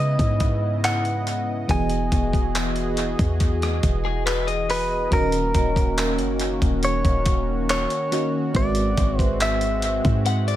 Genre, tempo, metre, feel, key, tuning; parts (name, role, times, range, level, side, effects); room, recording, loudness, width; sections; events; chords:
contemporary R&B; 70 BPM; 4/4; straight; A4 = 438 Hz
direct-recorded clean electric guitar; melody; 0.0-10.2 s; A#4 to G#5; -26 LUFS; equal; tape echo
FM electric piano with soft pad layer; accompaniment; 0.0-10.6 s; G#2 to E5; -27 LUFS; equal; chorus, tremolo, tape echo
warm analog pad; sustained chords; 0.0-10.6 s; C#3 to D#5; -29 LUFS; equal; chorus
warm 808-style bass; bass; 0.0-10.6 s; D#1 to C#3; -25 LUFS; equal
dusty soul sampler-style drum kit; drums; 0.2-10.6 s; handclaps, hi-hat, kick drum, rim click; -24 LUFS; equal; tape echo
direct-recorded clean electric guitar; arpeggios; 4.0-5.1, 10.3-10.6 s; G#4 to F#5; -27 LUFS; left 7 dB; analog chorus, tape echo
little or no reverb; echo-heavy mix; -19 LUFS; side -13 dB against mid
0.0-5.1 A section; 5.1-10.6 A section
0.0 C#m9; 1.7 Emaj9; 5.1 D#m7; 8.5 G#7alt